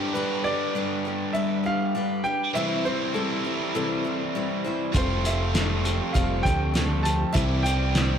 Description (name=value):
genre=folk rock and heartland rock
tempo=100 BPM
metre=4/4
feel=straight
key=unclear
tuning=A4 = 440 Hz
part: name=picked steel-string acoustic guitar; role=accompaniment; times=0.0-8.2 s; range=C3 to C5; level=-30 LUFS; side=left 4 dB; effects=slapback echo
part: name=biting overdriven guitar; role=riff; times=0.0-8.2 s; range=F2 to G4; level=-28 LUFS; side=right 1 dB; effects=spring reverb, slapback echo
part: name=warm grand piano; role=melody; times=0.1-8.2 s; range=A4 to A5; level=-30 LUFS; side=right 1 dB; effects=slapback echo
part: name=mellow tonewheel organ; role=sustained chords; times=4.9-8.2 s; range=C4 to C5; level=-40 LUFS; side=right 2 dB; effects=none
part: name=cloth-damped thuddy drum kit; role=drums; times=4.9-8.1 s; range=hi-hat, kick drum, snare drum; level=-26 LUFS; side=equal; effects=none
part: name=picked electric bass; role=bass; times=5.0-8.2 s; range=F1 to D2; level=-26 LUFS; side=equal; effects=none
room=moderate lush hall reverb, RT60 1.7 s, small room ambience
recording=big arena sound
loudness=-22 LUFS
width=side -8 dB against mid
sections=0.0-8.2 A section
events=none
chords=0.0 G; 2.6 C; 5.0 Fadd9; 7.4 C